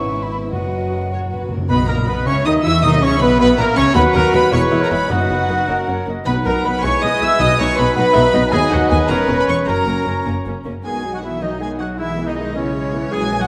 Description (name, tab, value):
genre	quick classical-period movement for symphony orchestra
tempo	105 BPM (dotted quarters)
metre	6/8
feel	straight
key	B major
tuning	A4 = 440 Hz
part	warm chamber violin section	melody	0.0-13.5 s	C#4 to E6	-27 LUFS	equal	none
part	mellow hollow silver concert flute	second line	0.0-13.5 s	C#5 to E6	-28 LUFS	equal	none
part	warm chamber violin section	second line	0.0-13.5 s	F#4 to G#5	-26 LUFS	equal	none
part	warm chamber viola section	accompaniment	0.0-13.5 s	C#3 to F#4	-26 LUFS	equal	none
part	dark French horn section	sustained chords	0.0-13.5 s	F#3 to F#4	-26 LUFS	equal	none
part	warm chamber cello section	bass	0.0-13.5 s	D#2 to G#3	-27 LUFS	equal	none
part	warm chamber double bass section	bass	0.0-13.5 s	E1 to E2	-26 LUFS	equal	none
part	timpani	percussion	0.5-7.9 s	F#2 to B2	-27 LUFS	equal	none
part	mellow cor anglais	second line	1.7-13.5 s	C#4 to E5	-27 LUFS	equal	none
part	warm clarinet	second line	1.7-13.4 s	C#4 to G#5	-28 LUFS	equal	none
part	clear trumpet	stabs	1.7-13.5 s	C#4 to E5	-27 LUFS	equal	none
room	wet scoring stage reverb, RT60 2.0 s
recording	none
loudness	-17 LUFS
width	mono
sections	0.0-1.7 A section; 1.7-10.9 B section; 10.9-13.5 C section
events	timpani fill 1.1-1.7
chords	0.0 E/G#; 0.5 B/F#; 1.7 B; 2.3 C#madd9; 2.8 B; 4.5 C#m7; 5.1 B/F#; 5.7 F#; 6.3 B; 6.8 E; 7.4 B; 9.1 C#m7; 9.7 F#; 10.9 B; 12.0 C#m7/B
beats	| 0.52 1.11 | 1.69 2.27 | 2.83 3.40 | 3.96 4.54 | 5.11 5.68 | 6.26 6.83 | 7.40 7.96 | 8.53 9.10 | 9.68 10.27 | 10.86 11.43 | 11.99 12.56 | 13.12